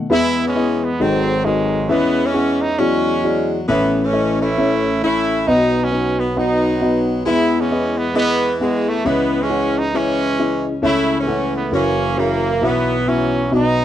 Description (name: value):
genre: gospel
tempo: 134 BPM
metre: 4/4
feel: swing 60% on 8ths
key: E major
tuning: A4 = 441 Hz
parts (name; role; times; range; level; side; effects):
- dark concert grand piano; accompaniment; 0.0-13.8 s; F#1 to F#5; -18 LUFS; left 2 dB; none
- warm horn section; melody; 0.1-13.8 s; B#2 to E4; -18 LUFS; right 2 dB; none
room: little or no reverb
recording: dry, close 1970s-style studio recording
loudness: -15 LUFS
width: side -11 dB against mid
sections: 0.1-13.8 A section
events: none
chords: 0.1 E; 1.0 G#7b9; 1.9 C#m/E; 2.8 E13; 3.7 A; 5.5 B; 7.3 E; 9.0 C#m; 10.8 A/C#; 11.7 F#7; 12.6 Bsus4